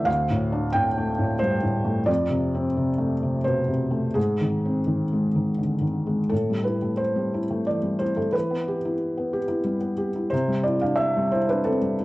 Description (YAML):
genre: neoclassical minimalist piano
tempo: 82-91 BPM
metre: 3/4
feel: rubato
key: A minor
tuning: A4 = 445 Hz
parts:
  - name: felt-muted upright piano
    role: solo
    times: 0.0-12.0 s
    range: D2 to G5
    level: -22 LUFS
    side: equal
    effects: cassette tape
room: light reverb, studio reverb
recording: home recording on cassette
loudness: -22 LUFS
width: side -18 dB against mid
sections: 0.0-6.3 A section; 6.3-12.0 B section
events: none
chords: 0.1 Dm; 2.1 F; 4.2 G#; 6.3 Am7; 8.3 Em; 10.3 Cadd9